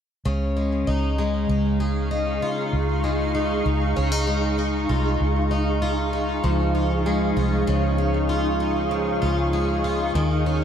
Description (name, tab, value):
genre	dream pop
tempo	97 BPM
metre	4/4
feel	straight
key	Db major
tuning	A4 = 437 Hz
part	shimmering ambient pad	sustained chords	1.5-10.6 s	Eb4 to Db6	-26 LUFS	equal	chorus, built-in reverb
part	picked plugged-in twelve-string acoustic guitar	arpeggios	0.3-10.6 s	Db3 to F4	-24 LUFS	left 1 dB	lush chorus, ping-pong delay
part	vintage muted fingered electric bass	bass	0.3-10.6 s	C2 to Eb2	-24 LUFS	equal	none
room	light reverb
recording	dark, warm production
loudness	-20 LUFS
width	side -8 dB against mid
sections	0.3-5.2 A section; 5.2-10.6 B section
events	none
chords	0.3 Dbadd9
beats	| 0.26 0.88 1.49 2.11 | 2.73 3.35 3.97 4.59 | 5.21 5.82 6.44 7.06 | 7.68 8.30 8.92 9.54 | 10.15